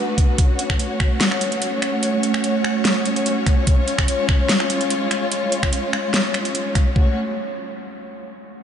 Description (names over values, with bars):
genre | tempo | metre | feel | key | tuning
heavy wobble dubstep | 146 BPM | 4/4 | half-time | F# harmonic minor | A4 = 439 Hz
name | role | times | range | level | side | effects
warm studio string section | sustained chords | 0.0-7.2 s | G#3 to C#5 | -22 LUFS | equal | sidechain pumping
dubstep drum kit | drums | 0.2-6.8 s | finger snaps, hi-hat, snare drum | -23 LUFS | equal | studio reverb
electronic kick drum | drums | 0.2-7.1 s | none | -17 LUFS | equal | studio reverb
room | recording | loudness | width
wet cathedral reverb, RT60 7.1 s | dreamy mix soaked in reverb, nothing above 10.4 kHz | -17 LUFS | side -8 dB against mid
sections
0.0-7.0 A section; 7.0-8.6 B section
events
none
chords
0.4 F#m/A; 3.7 C#; 7.0 F#m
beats
| 0.38 0.80 1.21 1.62 | 2.03 2.44 2.85 3.26 | 3.67 4.08 4.49 4.90 | 5.32 5.73 6.14 6.55 | 6.96